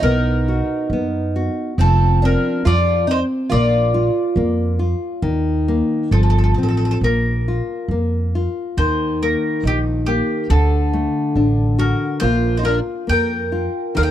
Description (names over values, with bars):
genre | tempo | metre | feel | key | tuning
fado-style ballad | 69 BPM | 2/4 | rubato | Bb major from 7.0 s | A4 = 440 Hz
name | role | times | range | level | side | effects
bowl-back mandolin | melody | 0.0-14.1 s | G4 to G5 | -23 LUFS | left 1 dB | none
picked plugged-in twelve-string acoustic guitar | second line | 0.0-6.5, 12.2-14.1 s | C4 to Bb4 | -24 LUFS | right 6 dB | none
nylon-string guitar | accompaniment | 0.0-14.1 s | D3 to F#4 | -21 LUFS | left 3 dB | none
upright bass | bass | 0.0-14.1 s | F1 to F#2 | -18 LUFS | right 1 dB | none
room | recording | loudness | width
small room ambience | dry, close 1970s-style studio recording | -16 LUFS | side -11 dB against mid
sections
0.0-7.0 A section; 7.0-14.1 B section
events
none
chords
0.0 Bmaj7; 1.8 F5; 3.5 Bb; 5.2 Eb5; 6.1 F; 7.0 Bb5; 8.8 Eb5; 10.5 D; 12.2 Bb5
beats
| 0.02 0.90 | 1.78 2.65 | 3.51 4.37 | 5.23 6.12 | 7.01 7.90 | 8.77 9.63 | 10.49 11.35 | 12.21 13.08 | 13.97